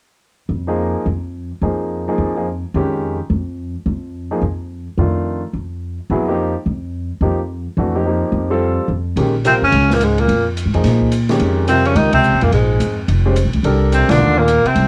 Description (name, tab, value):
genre	modal jazz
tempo	215 BPM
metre	4/4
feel	swing 62% on 8ths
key	Bb dorian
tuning	A4 = 440 Hz
part	upright bass	bass	0.5-14.9 s	F1 to Bb2	-21 LUFS	equal	none
part	warm baby grand piano	accompaniment	0.7-14.5 s	Eb3 to C5	-21 LUFS	equal	cassette tape
part	open jazz drum kit	drums	9.2-14.8 s	hi-hat, kick drum, ride cymbal, snare drum	-29 LUFS	equal	cassette tape
part	mellow bass clarinet	second line	9.4-14.9 s	Ab2 to Eb3	-23 LUFS	equal	cassette tape
part	breathy tenor saxophone	melody	9.5-14.9 s	Ab3 to Eb4	-17 LUFS	equal	none
room	moderate studio reverb, RT60 0.6 s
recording	home recording on cassette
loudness	-17 LUFS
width	mono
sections	0.2-9.2 A section; 9.2-14.9 B section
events	band accent 12.1, 14.1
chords	0.2 Bb7(no3); 4.7 Cm11 (rootless); 9.2 Bbm11; 13.6 Cm11